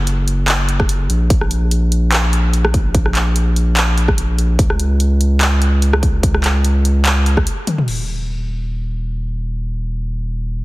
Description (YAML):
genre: future bass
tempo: 146 BPM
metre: 4/4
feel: swing 54% on 16ths, half-time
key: F# major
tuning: A4 = 440 Hz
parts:
  - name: saturated sub bass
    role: bass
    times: 0.0-10.6 s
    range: D#1 to C#2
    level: -16 LUFS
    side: equal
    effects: sidechain pumping
  - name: big-room dance drum kit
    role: drums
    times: 0.1-8.0 s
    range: crash cymbal, handclaps, hi-hat, rim click, toms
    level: -19 LUFS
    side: equal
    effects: small room ambience
  - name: electronic kick drum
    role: drums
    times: 0.8-7.4 s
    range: none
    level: -16 LUFS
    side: equal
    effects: small room ambience
room: digital ambience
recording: heavily compressed radio sound, multiband compression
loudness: -14 LUFS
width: side -20 dB against mid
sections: 0.0-7.9 A section; 7.9-10.6 B section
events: drop 0.0-7.9; break 7.5-7.9; drum fill 7.7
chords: none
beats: 0.07 0.48 0.89 | 1.30 1.71 2.12 2.54 | 2.95 3.36 3.77 4.18 | 4.59 5.00 5.41 5.82 | 6.23 6.64 7.06 7.47 | 7.88 8.29 8.70 9.11 | 9.52 9.93 10.34